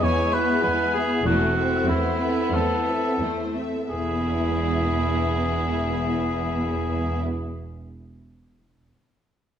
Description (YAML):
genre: classical, dramatic, fast romantic movement for symphony orchestra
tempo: 84-100 BPM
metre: 4/4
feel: rubato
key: E major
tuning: A4 = 440 Hz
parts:
  - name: rich symphonic violin section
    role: melody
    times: 0.0-7.2 s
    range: C5 to G#5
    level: -35 LUFS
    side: left 3 dB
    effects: none
  - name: rich symphonic violin section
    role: second line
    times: 0.0-7.2 s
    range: A3 to E4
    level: -32 LUFS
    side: left 2 dB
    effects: none
  - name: warm oboe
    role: second line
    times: 0.0-7.2 s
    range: E4 to C#5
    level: -26 LUFS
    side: equal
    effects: none
  - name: warm symphonic viola section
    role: accompaniment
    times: 0.0-7.2 s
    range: G#3 to A4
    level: -29 LUFS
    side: right 1 dB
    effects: none
  - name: mellow French horn section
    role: sustained chords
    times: 0.0-7.2 s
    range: B3 to E4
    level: -30 LUFS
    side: left 4 dB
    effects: none
  - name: rich symphonic cello section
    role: bass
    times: 0.0-7.2 s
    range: E2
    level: -29 LUFS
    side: right 2 dB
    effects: none
  - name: rich symphonic double bass section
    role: bass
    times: 1.3-7.2 s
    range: E1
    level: -30 LUFS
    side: right 2 dB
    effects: none
room: wet recital hall reverb, RT60 1.4 s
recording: none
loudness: -21 LUFS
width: side -9 dB against mid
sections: 0.0-3.9 A section; 3.9-6.4 B section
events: slowing down 0.0-3.9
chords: 0.0 E; 1.3 Am/E; 3.9 E